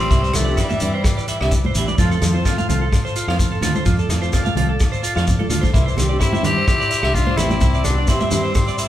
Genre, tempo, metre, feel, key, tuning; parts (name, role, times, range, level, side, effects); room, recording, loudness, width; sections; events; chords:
highlife guitar band; 128 BPM; 4/4; swing 53% on 16ths; C major; A4 = 439 Hz
raspy tenor saxophone; melody; 0.0-1.5, 6.2-8.9 s; G3 to G4; -23 LUFS; left 2 dB
breathy alto saxophone; second line; 0.0-1.5, 6.2-8.9 s; E3 to E4; -29 LUFS; left 2 dB
nylon-string guitar; accompaniment; 0.0-8.5 s; E3 to G4; -28 LUFS; left 1 dB
combo organ; sustained chords; 0.0-8.9 s; E4 to F5; -32 LUFS; left 3 dB
electric guitar at the edge of break-up; arpeggios; 0.0-8.9 s; E4 to F5; -25 LUFS; right 3 dB; spring reverb
fingered electric bass; bass; 0.0-8.5 s; A1 to G2; -21 LUFS; equal
congas; percussion; 0.0-8.4 s; -25 LUFS; right 1 dB
shekere; percussion; 0.0-8.9 s; -25 LUFS; left 1 dB
vintage drum kit; drums; 0.1-8.9 s; hi-hat, kick drum, rim click; -21 LUFS; equal
moderate large studio reverb, RT60 1.2 s; band playing live in one room; -16 LUFS; side -12 dB against mid
0.0-8.9 A section
0.0 Cadd9; 2.0 F; 5.7 Cadd9